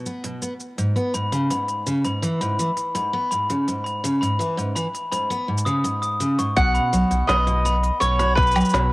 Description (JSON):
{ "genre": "folktronica", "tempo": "83 BPM", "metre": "4/4", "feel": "straight", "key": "B major", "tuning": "A4 = 440 Hz", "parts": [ { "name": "picked steel-string acoustic guitar", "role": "arpeggios", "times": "0.0-8.9 s", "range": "G#2 to F#4", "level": "-24 LUFS", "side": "equal", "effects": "low-pass filter, cassette tape, tape echo" }, { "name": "organic electronic drum kit", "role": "drums", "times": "0.1-8.9 s", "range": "hi-hat, shaker, snare drum, woodblock", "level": "-29 LUFS", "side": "equal", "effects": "overdrive, cassette tape" }, { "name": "glockenspiel with hard plastic mallets", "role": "second line", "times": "1.1-8.7 s", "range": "B5 to D#6", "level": "-25 LUFS", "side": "left 1 dB", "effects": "cassette tape, tape echo" }, { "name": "mandolin", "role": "melody", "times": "6.6-8.9 s", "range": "B4 to F#5", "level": "-21 LUFS", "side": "equal", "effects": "cassette tape" }, { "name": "warm sub bass", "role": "bass", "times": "6.6-8.9 s", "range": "B1", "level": "-22 LUFS", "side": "equal", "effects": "none" }, { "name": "electronic kick drum", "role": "drums", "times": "6.6-8.5 s", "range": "none", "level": "-20 LUFS", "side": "equal", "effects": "overdrive, cassette tape" } ], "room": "moderate spring reverb, RT60 2.6 s", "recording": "home recording on cassette", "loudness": "-19 LUFS", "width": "side -21 dB against mid", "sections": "0.0-6.6 A section; 6.6-8.9 B section", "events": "none", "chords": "0.0 B5; 0.8 C#7(no3); 6.6 B" }